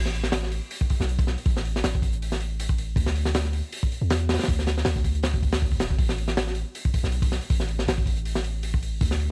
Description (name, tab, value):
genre	drum and bass, jungle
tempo	159 BPM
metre	4/4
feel	swing 54% on 16ths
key	unclear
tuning	A4 = 439 Hz
part	long sustained 808-style bass	bass	0.0-9.3 s	D1 to E2	-29 LUFS	equal	tube saturation
part	crunchy breakbeat drum kit	drums	0.1-9.3 s	hi-hat, kick drum, snare drum	-27 LUFS	equal	none
room	little or no reverb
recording	dry, gritty hardware recording, vinyl crackle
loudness	-25 LUFS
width	mono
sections	0.0-9.3 A section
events	none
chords	none